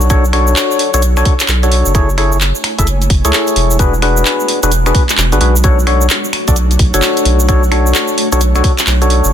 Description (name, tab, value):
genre	UK garage, two-step garage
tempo	130 BPM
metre	4/4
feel	swing 63% on 16ths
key	B dorian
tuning	A4 = 440 Hz
part	ethereal airy pad	sustained chords	0.0-9.3 s	G#3 to G#5	-23 LUFS	equal	ensemble chorus, built-in reverb, tremolo, sidechain pumping
part	percussive organ stab	stabs	0.0-9.3 s	D4 to E5	-15 LUFS	left 2 dB	chorus, dub echo
part	saturated sub bass	bass	0.0-9.3 s	E1 to C#2	-12 LUFS	equal	none
part	cabasa	percussion	0.0-9.3 s	none	-22 LUFS	right 4 dB	none
part	electronic kick drum	drums	0.1-8.8 s	none	-12 LUFS	equal	none
part	garage drum kit	drums	0.1-9.2 s	finger snaps, handclaps, hi-hat	-16 LUFS	equal	none
room	light reverb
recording	dense, heavily limited modern master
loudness	-9 LUFS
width	side -9 dB against mid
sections	0.0-9.3 A section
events	none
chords	0.0 Bm7; 1.9 F#m9; 3.8 E7; 5.6 Bm7